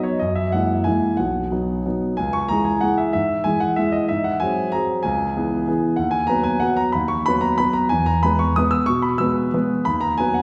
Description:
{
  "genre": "classical, piano waltz",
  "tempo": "186 BPM",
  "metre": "3/4",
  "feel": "rubato",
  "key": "B major",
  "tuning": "A4 = 440 Hz",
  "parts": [
    { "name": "warm grand piano", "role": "solo", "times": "0.0-10.4 s", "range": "B1 to E6", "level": "-20 LUFS", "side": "equal", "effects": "none" }
  ],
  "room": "wet recital hall reverb, RT60 1.4 s",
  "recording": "heard from further back in the room",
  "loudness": "-20 LUFS",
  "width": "mono",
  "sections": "0.0-10.4 A section",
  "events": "none",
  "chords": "0.2 F#9; 1.2 B; 2.2 C#m; 4.1 G#7; 5.0 C#m7; 6.0 B/D#; 7.9 E; 9.9 B/D#"
}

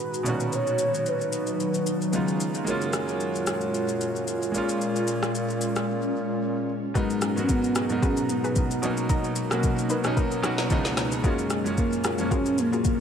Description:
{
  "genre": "amapiano",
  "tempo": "112 BPM",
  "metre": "4/4",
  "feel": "swing 55% on 16ths",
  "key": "G# dorian",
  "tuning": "A4 = 439 Hz",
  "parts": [
    { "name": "warm velvety synth lead", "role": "melody", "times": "0.0-2.4, 7.0-13.0 s", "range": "G#3 to C#5", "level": "-28 LUFS", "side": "equal", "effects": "chorus, dub echo" },
    { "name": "clear concert grand piano", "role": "accompaniment", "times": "0.0-13.0 s", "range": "C#2 to A#4", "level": "-29 LUFS", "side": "right 2 dB", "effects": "dub echo" },
    { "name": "ethereal airy pad", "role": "sustained chords", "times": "0.0-13.0 s", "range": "A#2 to E#5", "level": "-30 LUFS", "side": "equal", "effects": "ensemble chorus, built-in reverb" },
    { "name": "smooth R&B drum kit", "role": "drums", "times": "0.1-13.0 s", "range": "kick drum, rim click, shaker, snare drum", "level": "-28 LUFS", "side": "equal", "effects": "none" },
    { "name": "warm bassoon", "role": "bass", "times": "2.7-6.9 s", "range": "F#2 to A#2", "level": "-30 LUFS", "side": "equal", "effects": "none" },
    { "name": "soft round pluck", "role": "stabs", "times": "6.9-12.8 s", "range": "D#4 to D#5", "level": "-33 LUFS", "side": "left 2 dB", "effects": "chorus, dub echo" }
  ],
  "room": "moderate echo chamber reverb, RT60 2.1 s",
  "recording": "echo-heavy mix",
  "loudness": "-23 LUFS",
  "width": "side -8 dB against mid",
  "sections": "0.0-7.0 A section; 7.0-13.0 B section",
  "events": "drums muted 5.9-7.0",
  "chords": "0.3 Bmaj7; 2.1 C#7; 2.7 F#maj9; 4.5 A#m7; 7.0 G#m7; 8.8 Bmaj7; 10.7 C#7; 11.2 F#maj9"
}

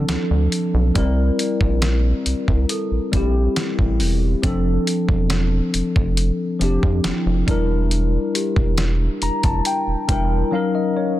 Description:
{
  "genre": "contemporary R&B",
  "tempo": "69 BPM",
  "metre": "4/4",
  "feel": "straight",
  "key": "unclear",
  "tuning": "A4 = 443 Hz",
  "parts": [
    { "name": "mellow tine electric piano", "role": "accompaniment", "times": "0.0-11.2 s", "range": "F3 to Bb5", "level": "-21 LUFS", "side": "left 2 dB", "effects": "analog chorus" },
    { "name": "rubbery square bass", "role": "bass", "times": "0.0-10.4 s", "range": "E1 to F2", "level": "-20 LUFS", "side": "equal", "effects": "none" },
    { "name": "dusty soul sampler-style drum kit", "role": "drums", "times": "0.1-10.3 s", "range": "hi-hat, kick drum, snare drum", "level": "-22 LUFS", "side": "equal", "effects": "none" },
    { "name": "large celesta", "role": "texture", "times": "1.0-9.9 s", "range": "E4 to D5", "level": "-33 LUFS", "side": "right 5 dB", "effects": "tape echo" }
  ],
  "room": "little or no reverb",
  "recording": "dense, heavily limited modern master",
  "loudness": "-17 LUFS",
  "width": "side -14 dB against mid",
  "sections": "0.0-11.2 A section",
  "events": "tine electric piano fill 8.8-11.2; silent gap 10.5-11.2",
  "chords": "0.0 Dm7; 1.0 C7; 4.4 F6; 7.5 Em7b5; 10.5 Ebm7"
}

